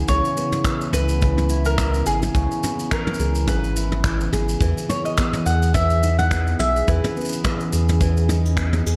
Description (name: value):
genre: folktronica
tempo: 106 BPM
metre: 4/4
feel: swing 56% on 16ths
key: C# minor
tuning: A4 = 440 Hz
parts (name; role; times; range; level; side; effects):
- warbly tape-like pad; sustained chords; 0.0-9.0 s; C#3 to G#4; -31 LUFS; equal; chorus, built-in reverb
- nylon-string guitar; arpeggios; 0.0-9.0 s; C#3 to G#4; -29 LUFS; equal; tape echo
- warm sub bass; bass; 0.0-9.0 s; G#1 to E2; -23 LUFS; equal; tube saturation
- mandolin; melody; 0.1-8.0 s; G#4 to F#5; -27 LUFS; equal; none
- kick drum; drums; 0.1-8.7 s; none; -28 LUFS; equal; none
- vintage brush drum kit; drums; 0.1-9.0 s; finger snaps, shaker, toms; -30 LUFS; equal; none
room: moderate plate reverb, RT60 1.2 s, small room reverb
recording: dreamy mix soaked in reverb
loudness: -20 LUFS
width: mono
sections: 0.0-9.0 A section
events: none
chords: 0.0 C#m7; 4.6 Emaj7